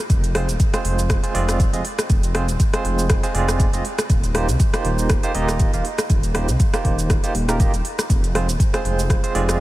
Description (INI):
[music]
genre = afro house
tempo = 120 BPM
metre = 4/4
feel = swing 55% on 16ths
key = F dorian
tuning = A4 = 439 Hz
[part]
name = dark detuned saw bass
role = bass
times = 0.1-9.6 s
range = Eb1 to C2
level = -22 LUFS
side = equal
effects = sidechain pumping
[part]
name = afro-pop drum kit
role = drums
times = 0.1-9.6 s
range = hi-hat, rim click, shaker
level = -25 LUFS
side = equal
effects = small room reverb
[part]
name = electronic kick drum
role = drums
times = 0.1-9.2 s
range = none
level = -18 LUFS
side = equal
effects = small room reverb
[part]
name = barky tine electric piano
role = stabs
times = 0.3-9.6 s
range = Ab3 to F5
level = -25 LUFS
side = right 3 dB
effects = fast tremolo, sidechain pumping, tape echo
[sound]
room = light reverb, digital ambience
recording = none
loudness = -17 LUFS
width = side -16 dB against mid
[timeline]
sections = 0.0-9.6 A section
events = none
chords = 0.1 Fm; 4.1 Eb6; 8.1 Fm